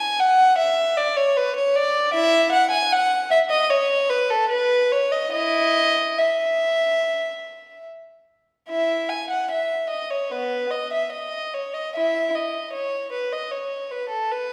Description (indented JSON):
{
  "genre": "classical, baroque-style suite movement for unaccompanied violin",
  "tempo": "74 BPM",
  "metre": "4/4",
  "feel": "uneven beats, rubato",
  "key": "E major",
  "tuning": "A4 = 440 Hz",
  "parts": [
    { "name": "warm violin", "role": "solo", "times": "0.0-14.5 s", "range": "B3 to G#5", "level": "-22 LUFS", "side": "equal", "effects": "none" }
  ],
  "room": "wet recital hall reverb, RT60 1.5 s",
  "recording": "heard from further back in the room",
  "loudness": "-22 LUFS",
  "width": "mono",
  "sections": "0.0-8.7 A section; 8.7-14.5 B section",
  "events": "none",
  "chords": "none"
}